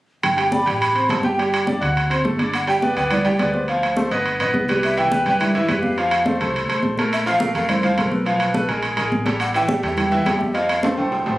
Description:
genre	latin, salsa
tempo	209 BPM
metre	4/4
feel	straight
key	G major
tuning	A4 = 440 Hz
part	breathy mellow jazz flute	melody	0.2-11.4 s	B4 to B5	-22 LUFS	right 1 dB	none
part	upright bass	bass	0.2-11.4 s	G1 to G2	-27 LUFS	equal	none
part	congas	percussion	0.2-11.4 s	none	-24 LUFS	equal	none
part	timbales	percussion	0.2-11.3 s	none	-25 LUFS	right 2 dB	none
part	bright baby grand piano	accompaniment	0.4-11.4 s	E3 to G5	-22 LUFS	equal	none
room	moderate studio reverb, RT60 0.7 s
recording	recorded on a phone in the room, studio reverb, compression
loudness	-17 LUFS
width	side -17 dB against mid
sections	0.2-2.5 A section; 2.5-11.4 B section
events	drum fill 10.8-11.4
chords	0.2 G; 0.8 Am7; 1.4 G5; 2.0 D7; 2.5 G; 3.7 Dm7; 4.3 Gaug; 4.8 Cmaj7; 6.0 F; 7.1 Bbsus2; 8.3 Abm69; 8.8 Gmadd9; 9.4 A5; 10.5 Fadd9

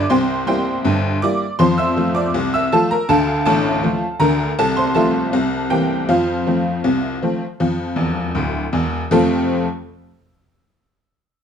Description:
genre	ragtime piano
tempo	80 BPM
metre	2/4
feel	straight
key	F major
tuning	A4 = 440 Hz
part	tack piano	solo	0.0-9.7 s	D1 to E6	-16 LUFS	equal	none
room	moderate studio reverb, RT60 1.0 s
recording	dark, warm production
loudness	-16 LUFS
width	side -8 dB against mid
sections	0.0-9.1 A section; 9.1-10.6 B section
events	honky-tonk piano fill 8.0-9.1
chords	0.1 C7; 1.6 F; 3.1 Dm; 4.6 F/C; 5.3 C7; 6.1 F

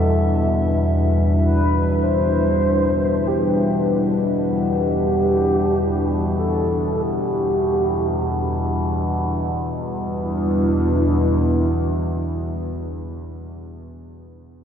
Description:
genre	dark ambient drone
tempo	free time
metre	none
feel	none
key	E minor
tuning	A4 = 440 Hz
part	mellow horn-like synth lead	melody	0.0-12.7 s	E4 to C5	-24 LUFS	right 1 dB	wide subtle chorus, diffuse ambient delay
part	dark analog pad	sustained chords	0.0-13.3 s	E2 to E5	-21 LUFS	left 1 dB	chorus
part	overtone-sweeping drone	drone	0.0-12.7 s	E2 to B2	-23 LUFS	left 1 dB	chorus, built-in reverb
room	wet cathedral reverb, RT60 5.2 s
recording	worn, warbling old tape, cassette tape, warbly pitch drift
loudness	-18 LUFS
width	side -8 dB against mid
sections	0.0-9.5 A section; 9.5-14.5 B section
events	none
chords	0.0 Em

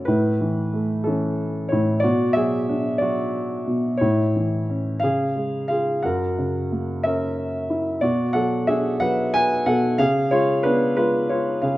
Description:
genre	classical, lyrical solo piano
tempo	61 BPM (dotted quarters)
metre	6/8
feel	rubato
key	unclear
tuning	A4 = 435 Hz
part	dark grand piano	solo	0.0-11.8 s	F#2 to G#5	-19 LUFS	equal	none
room	moderate recital hall reverb, RT60 1.4 s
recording	dark, warm production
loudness	-19 LUFS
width	side -16 dB against mid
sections	0.0-11.8 A section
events	none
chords	0.1 A; 2.0 Bm; 4.0 A; 5.0 C#; 6.0 F#7; 8.0 Bm; 10.0 C#7

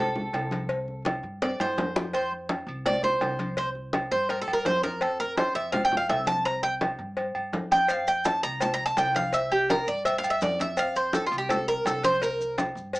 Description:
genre	latin, Cuban son and guajira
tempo	167 BPM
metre	4/4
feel	straight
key	F major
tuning	A4 = 440 Hz
part	Cuban tres	arpeggios	0.0-12.6 s	F4 to Bb5	-25 LUFS	right 1 dB	none
part	upright bass	bass	0.0-13.0 s	C2 to G2	-39 LUFS	equal	none
part	congas	percussion	0.2-13.0 s	none	-32 LUFS	left 1 dB	none
part	cowbell and bongos	percussion	0.3-13.0 s	none	-33 LUFS	left 2 dB	none
part	timbales and agogo bells	percussion	0.3-13.0 s	none	-32 LUFS	right 1 dB	none
part	maracas	percussion	7.9-13.0 s	none	-43 LUFS	left 3 dB	none
room	moderate small room ambience, RT60 0.5 s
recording	small speaker sound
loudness	-24 LUFS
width	side -21 dB against mid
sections	0.0-13.0 A section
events	Cuban tres solo 0.0-13.0; drum fill 1.1-2.1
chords	0.0 F (rootless); 0.7 C5; 2.1 F5; 3.6 C5; 5.0 F5; 6.5 C5; 7.9 F5; 9.3 C5; 10.8 F5; 12.2 C5

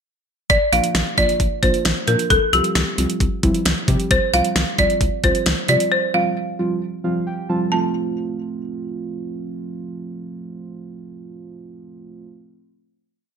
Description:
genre	synth-pop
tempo	133 BPM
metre	4/4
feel	straight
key	F major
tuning	A4 = 440 Hz
part	folk marimba with hard mallets	melody	0.5-12.3 s	G4 to A5	-19 LUFS	equal	none
part	rubbery square bass	bass	0.5-5.8 s	Bb1 to C3	-22 LUFS	left 1 dB	none
part	pop drum kit	drums	0.5-5.9 s	hi-hat, kick drum, snare drum	-20 LUFS	equal	gated reverb
part	muted felt-like synth keys	accompaniment	0.7-12.3 s	F3 to A5	-24 LUFS	right 2 dB	chorus
room	moderate plate reverb, RT60 1.1 s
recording	bright 1980s-style digital production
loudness	-17 LUFS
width	side -6 dB against mid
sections	0.5-7.7 verse; 7.7-11.3 final chord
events	synth keys fill 6.8-7.7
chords	0.5 Bb; 2.3 Csus4; 7.7 F

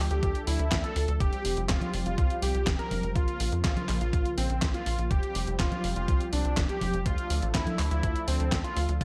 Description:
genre	italo disco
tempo	123 BPM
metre	4/4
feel	straight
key	unclear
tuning	A4 = 441 Hz
part	unison lead	melody	0.0-9.0 s	C4 to Bb4	-36 LUFS	equal	lush chorus, digital delay
part	warm analog pad	sustained chords	0.0-9.0 s	Db3 to A4	-40 LUFS	equal	chorus
part	tight sequencer bass	bass	0.0-9.0 s	F1 to F2	-32 LUFS	equal	tube saturation
part	clean 12-bit digital drum machine	drums	0.1-9.0 s	congas, handclaps, hi-hat, snare drum	-35 LUFS	equal	gated reverb
part	electronic kick drum	drums	0.2-9.0 s	none	-31 LUFS	equal	none
room	little or no reverb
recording	none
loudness	-28 LUFS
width	mono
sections	0.0-9.0 A section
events	none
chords	0.0 Dm; 1.2 Fsus2; 3.2 Bbm; 5.1 Fsus2; 7.1 Dm

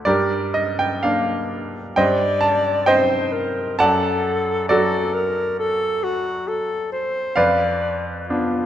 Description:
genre	classical, romantic duo for alto saxophone and grand piano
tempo	61-69 BPM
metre	4/4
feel	rubato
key	unclear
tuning	A4 = 440 Hz
part	bright grand piano	accompaniment	0.0-8.7 s	F2 to A5	-19 LUFS	right 1 dB	none
part	clear alto saxophone	melody	2.0-8.7 s	F4 to D5	-22 LUFS	left 1 dB	none
room	moderate scoring stage reverb, RT60 1.6 s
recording	dark, warm production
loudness	-18 LUFS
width	side -11 dB against mid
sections	0.0-8.7 A section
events	none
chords	0.0 Gm; 2.0 Cm13/G; 3.8 D/F#; 7.4 Bdim/F

